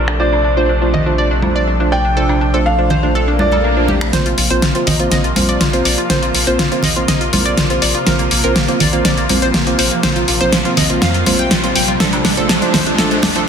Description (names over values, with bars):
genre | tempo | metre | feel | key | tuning
progressive house | 122 BPM | 4/4 | straight | Bb major | A4 = 441 Hz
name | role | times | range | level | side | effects
clear concert grand piano | melody | 0.0-4.0 s | D5 to G5 | -20 LUFS | equal | ping-pong delay
supersaw pad | sustained chords | 0.0-13.5 s | C3 to F4 | -22 LUFS | equal | phaser
analog pluck | arpeggios | 0.0-13.4 s | Bb3 to G5 | -20 LUFS | left 1 dB | chorus, ping-pong delay
round analog bass | bass | 0.0-13.4 s | Bb1 to F2 | -20 LUFS | equal | none
deep house drum kit | drums | 0.1-0.2, 4.0-13.5 s | finger snaps, hi-hat, snare drum | -16 LUFS | equal | none
woodblock and congas | percussion | 0.1-13.3 s | none | -21 LUFS | right 2 dB | none
deep mellow chord stab | stabs | 0.2-13.5 s | A3 to D5 | -20 LUFS | right 2 dB | chorus, ping-pong delay
swell and riser | sound effects | 3.3-13.5 s | none | -24 LUFS | equal | none
room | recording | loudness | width
moderate digital room reverb, RT60 1.1 s, digital ambience | dense, heavily limited modern master, high-pass filter, low-pass filter | -12 LUFS | side -7 dB against mid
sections
0.0-4.1 A section; 4.1-13.5 B section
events
swell 3.3-4.1; build-up 4.1-13.5; drum fill 4.1-13.5; riser 8.0-13.5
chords
0.0 Dm7/Bb; 4.1 Bbsus2; 12.0 Dm7/Bb